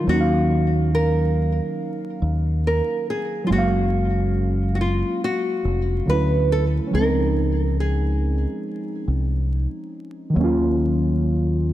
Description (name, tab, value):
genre	lo-fi hip hop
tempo	70 BPM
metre	4/4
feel	swing 64% on 16ths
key	Eb dorian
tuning	A4 = 440 Hz
part	nylon-string guitar	melody	0.0-9.0 s	F4 to Cb5	-25 LUFS	equal	ping-pong delay
part	muted felt-like synth keys	accompaniment	0.0-11.7 s	D3 to F5	-24 LUFS	right 1 dB	chorus, cassette tape
part	deep dub fingered electric bass	bass	0.1-11.7 s	F1 to Eb2	-21 LUFS	equal	none
room	light reverb, small room ambience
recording	vinyl crackle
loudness	-19 LUFS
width	side -14 dB against mid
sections	0.0-11.7 A section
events	none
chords	0.0 Ebm7; 3.5 Gbmaj7; 6.1 Dmaj9; 6.9 Dbmaj9; 10.4 Ebm7